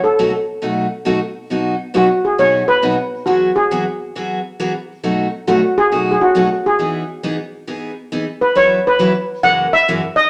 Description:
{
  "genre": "country",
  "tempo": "136 BPM",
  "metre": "4/4",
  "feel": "swing 67% on 8ths",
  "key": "E major",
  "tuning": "A4 = 438 Hz",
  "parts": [
    { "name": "steel pan", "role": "melody", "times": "0.0-10.3 s", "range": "F#4 to F#5", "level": "-16 LUFS", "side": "equal", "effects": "none" },
    { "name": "picked steel-string acoustic guitar", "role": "accompaniment", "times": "0.2-10.0 s", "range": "F#2 to B4", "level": "-22 LUFS", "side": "equal", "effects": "none" }
  ],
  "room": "wet studio reverb, RT60 0.9 s",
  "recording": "none",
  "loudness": "-16 LUFS",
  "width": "mono",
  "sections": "0.0-8.6 A section; 8.6-10.3 B section",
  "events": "none",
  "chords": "0.0 B7; 1.5 B; 3.3 Eadd9; 5.0 B7; 6.8 Emaj7; 8.6 Esus2; 9.4 F#7"
}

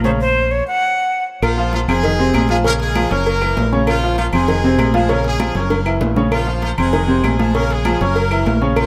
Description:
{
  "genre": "latin, salsa",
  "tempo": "196 BPM",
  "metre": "4/4",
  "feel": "straight",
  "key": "unclear",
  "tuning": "A4 = 439 Hz",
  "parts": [
    { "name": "breathy bright jazz flute", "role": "melody", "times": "0.0-1.2 s", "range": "C5 to Gb5", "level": "-20 LUFS", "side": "equal", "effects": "none" },
    { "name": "clear concert grand piano", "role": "accompaniment", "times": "0.0-8.9 s", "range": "C3 to Db6", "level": "-22 LUFS", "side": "equal", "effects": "none" },
    { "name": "fingered electric bass", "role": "bass", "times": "0.0-8.9 s", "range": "F1 to Bb1", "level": "-22 LUFS", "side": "equal", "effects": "none" },
    { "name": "congas", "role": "percussion", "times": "0.0-8.9 s", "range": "none", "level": "-27 LUFS", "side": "equal", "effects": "none" },
    { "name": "cowbell and bongos", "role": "percussion", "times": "0.0-8.9 s", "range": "none", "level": "-27 LUFS", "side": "equal", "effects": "none" },
    { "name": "agogo bells and timbales", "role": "percussion", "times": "0.1-8.9 s", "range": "none", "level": "-28 LUFS", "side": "equal", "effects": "none" },
    { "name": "brilliant horn section", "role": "melody", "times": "1.4-8.9 s", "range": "F3 to Bb4", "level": "-25 LUFS", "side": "equal", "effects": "tape echo" },
    { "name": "claves", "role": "percussion", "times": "1.4-8.9 s", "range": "none", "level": "-33 LUFS", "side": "equal", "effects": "none" }
  ],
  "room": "moderate plate reverb, RT60 2.6 s",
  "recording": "none",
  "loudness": "-16 LUFS",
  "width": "mono",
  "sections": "0.0-1.4 A section; 1.4-8.9 B section",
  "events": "drum fill 5.4-6.3",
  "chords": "0.2 Bbmadd9; 0.8 N.C.; 1.4 Bb5; 2.0 Fm7; 2.6 Bbm7; 3.3 Gb7; 3.9 Bbm7; 4.5 Fm7; 5.1 Bbm7; 5.7 Gb7; 6.3 Bbm7; 6.9 Fm7; 7.5 Bbm7; 8.2 Gb7"
}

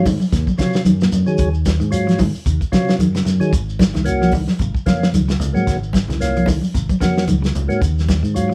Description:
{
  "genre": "afrobeat",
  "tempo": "112 BPM",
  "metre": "4/4",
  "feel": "swing 56% on 16ths",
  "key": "Eb dorian",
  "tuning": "A4 = 442 Hz",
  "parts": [
    { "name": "percussive tonewheel organ", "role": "accompaniment", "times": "0.0-8.5 s", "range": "Gb3 to Ab4", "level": "-23 LUFS", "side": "equal", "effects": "slow rotary speaker" },
    { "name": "fingered electric bass", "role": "bass", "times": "0.0-8.5 s", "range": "Ab1 to Eb3", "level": "-22 LUFS", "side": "equal", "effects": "none" },
    { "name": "electric guitar at the edge of break-up", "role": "arpeggios", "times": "0.1-8.5 s", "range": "Bb2 to F3", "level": "-25 LUFS", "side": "equal", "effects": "none" },
    { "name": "warm soul drum kit", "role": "drums", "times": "0.1-8.5 s", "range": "hi-hat, kick drum, snare drum", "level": "-23 LUFS", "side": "equal", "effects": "none" },
    { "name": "congas", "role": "percussion", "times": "0.1-8.2 s", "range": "none", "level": "-24 LUFS", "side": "equal", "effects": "none" },
    { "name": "shekere", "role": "percussion", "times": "0.1-8.5 s", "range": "none", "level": "-32 LUFS", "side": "equal", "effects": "none" }
  ],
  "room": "light reverb",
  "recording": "none",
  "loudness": "-17 LUFS",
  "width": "mono",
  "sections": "0.0-8.5 A section",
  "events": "none",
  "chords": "0.0 Ebm7; 3.5 Ab9sus4; 7.8 Ebm7"
}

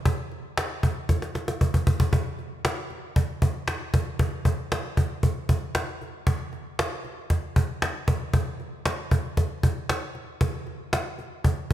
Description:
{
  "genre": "pop",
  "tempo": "116 BPM",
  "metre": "4/4",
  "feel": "straight",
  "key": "none",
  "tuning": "none",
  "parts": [
    { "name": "cajon", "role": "drums", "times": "0.1-11.7 s", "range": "none", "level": "-24 LUFS", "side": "equal", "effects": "none" }
  ],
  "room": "light reverb",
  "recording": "none",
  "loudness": "-24 LUFS",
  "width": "side -12 dB against mid",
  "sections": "0.0-2.1 A section; 2.1-11.7 B section",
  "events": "drum fill 1.1-2.1",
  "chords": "none"
}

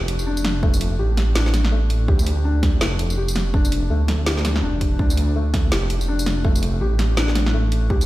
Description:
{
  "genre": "half-time drum and bass",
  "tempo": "165 BPM",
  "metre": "4/4",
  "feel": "swing 60% on 16ths, half-time",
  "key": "D minor",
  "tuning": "A4 = 440 Hz",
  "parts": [
    { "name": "felt-muted upright piano", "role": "arpeggios", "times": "0.0-8.1 s", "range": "A3 to G4", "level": "-26 LUFS", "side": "left 4 dB", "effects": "dub echo" },
    { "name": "dark detuned saw bass", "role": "bass", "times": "0.0-8.1 s", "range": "F1 to D2", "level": "-20 LUFS", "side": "right 1 dB", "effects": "none" },
    { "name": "drum and bass drum kit", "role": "drums", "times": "0.1-8.1 s", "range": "hi-hat, snare drum, tambourine", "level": "-25 LUFS", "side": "equal", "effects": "none" },
    { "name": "electronic kick drum", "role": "drums", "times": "0.6-8.0 s", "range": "none", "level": "-19 LUFS", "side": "right 1 dB", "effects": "none" }
  ],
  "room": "digital ambience",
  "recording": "played on a big sound system in a bare room, stone room reverb",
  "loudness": "-17 LUFS",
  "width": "side -16 dB against mid",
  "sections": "0.0-8.1 A section",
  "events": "none",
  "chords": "0.0 Dm"
}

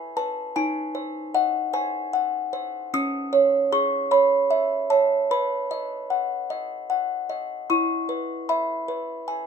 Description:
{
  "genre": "classical, lullaby for music box",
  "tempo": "51 BPM (dotted quarters)",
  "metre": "6/8",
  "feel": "straight",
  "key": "E major",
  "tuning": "A4 = 440 Hz",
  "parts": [
    { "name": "music box", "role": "solo", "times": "0.0-9.5 s", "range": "C#4 to D#6", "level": "-22 LUFS", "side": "right 1 dB", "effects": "none" }
  ],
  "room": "moderate studio reverb, RT60 0.7 s",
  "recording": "minimal, uncompressed stereo recording",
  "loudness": "-22 LUFS",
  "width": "side -6 dB against mid",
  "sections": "0.0-9.5 A section",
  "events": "none",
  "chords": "0.0 E; 0.6 G#7/D#; 2.9 C#m; 5.3 B; 7.7 E5"
}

